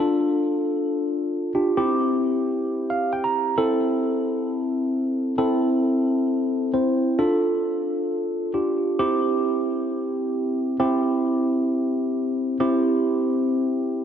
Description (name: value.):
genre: pop.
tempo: 133 BPM.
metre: 4/4.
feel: straight.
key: unclear.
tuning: A4 = 440 Hz.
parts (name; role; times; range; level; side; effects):
tine electric piano; solo; 0.0-14.0 s; C4 to Bb5; -20 LUFS; equal; phaser.
room: wet lush hall reverb, RT60 2.8 s.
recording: worn, warbling old tape, cassette tape, warbly pitch drift, nothing above 7.5 kHz.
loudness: -20 LUFS.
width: side -8 dB against mid.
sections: 0.0-14.0 A section.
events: tine electric piano fill 2.7-3.6.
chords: 0.0 Dm; 1.8 C; 3.6 Am; 7.2 Dm; 9.0 C.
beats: 0.42 0.87 1.32 | 1.78 2.23 2.68 3.13 | 3.58 4.03 4.48 4.93 | 5.38 5.84 6.29 6.74 | 7.19 7.64 8.09 8.54 | 8.99 9.45 9.90 10.35 | 10.80 11.25 11.70 12.15 | 12.60 13.05 13.51 13.96.